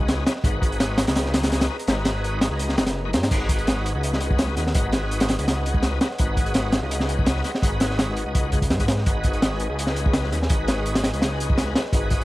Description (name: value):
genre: drum and bass, jungle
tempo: 167 BPM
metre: 4/4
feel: swing 53% on 16ths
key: G# minor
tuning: A4 = 439 Hz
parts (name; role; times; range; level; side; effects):
- airy breathy pad; sustained chords; 0.0-12.2 s; G#4 to A#5; -32 LUFS; equal; chorus, vintage 12-bit sampler grit
- bright tonewheel organ; stabs; 0.0-12.2 s; G#3 to B4; -30 LUFS; left 2 dB; overdrive, chorus vibrato, slow rotary speaker, vintage 12-bit sampler grit, dub echo
- detuned saw bass; bass; 0.0-12.2 s; F#1 to G#2; -26 LUFS; equal; none
- crunchy breakbeat drum kit; drums; 0.1-12.2 s; crash cymbal, hi-hat, kick drum, snare drum; -22 LUFS; equal; none
room: studio reverb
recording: vinyl crackle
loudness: -20 LUFS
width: side -18 dB against mid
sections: 0.0-3.3 A section; 3.3-12.2 A section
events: drop 0.0-3.3, 3.3-12.2; kick drops out 2.6-3.3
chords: 0.0 G#m7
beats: 0.08 | 0.44 0.80 1.16 1.52 | 1.88 2.24 2.60 2.96 | 3.31 3.67 4.03 4.39 | 4.75 5.11 5.47 5.83 | 6.19 6.55 6.91 7.27 | 7.63 7.99 8.35 8.70 | 9.06 9.42 9.78 10.14 | 10.50 10.86 11.22 11.58 | 11.94